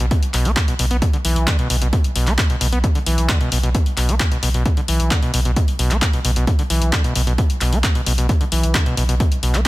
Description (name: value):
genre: driving peak-time techno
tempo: 132 BPM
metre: 4/4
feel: straight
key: B minor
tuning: A4 = 440 Hz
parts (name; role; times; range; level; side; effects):
- overdriven acid bass; riff; 0.0-9.6 s; B2 to B3; -23 LUFS; equal; distortion, sidechain pumping, dub echo
- saturated sub bass; bass; 0.0-9.7 s; B1; -19 LUFS; equal; tube saturation, sidechain pumping, low-pass filter
- punchy analog drum machine; drums; 0.0-9.7 s; handclaps, hi-hat; -23 LUFS; left 2 dB; overdrive, studio reverb
- electronic kick drum; drums; 0.1-9.7 s; none; -18 LUFS; equal; overdrive, studio reverb
room: digital ambience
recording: none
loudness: -16 LUFS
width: side -19 dB against mid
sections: 0.0-9.7 A section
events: none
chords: 0.0 Bsus4